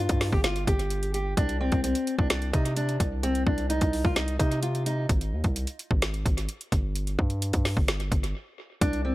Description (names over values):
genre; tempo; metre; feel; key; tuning
hip hop, trap; 129 BPM; 4/4; half-time; C minor; A4 = 441 Hz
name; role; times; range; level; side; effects
fingerpicked steel-string acoustic guitar; melody; 0.0-5.0, 8.8-9.1 s; C4 to G4; -29 LUFS; equal; low-pass filter, tape echo
distorted 808-style bass; bass; 0.0-9.1 s; G1 to C3; -28 LUFS; equal; distortion
trap drum kit; drums; 0.1-9.0 s; hi-hat, kick drum, snare drum; -26 LUFS; equal; none
room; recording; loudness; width
little or no reverb; echo-heavy mix; -24 LUFS; side -18 dB against mid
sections
0.0-9.1 A section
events
break 8.3-8.8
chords
0.0 Ebadd9/G (rootless); 1.4 Cmadd9; 5.1 N.C.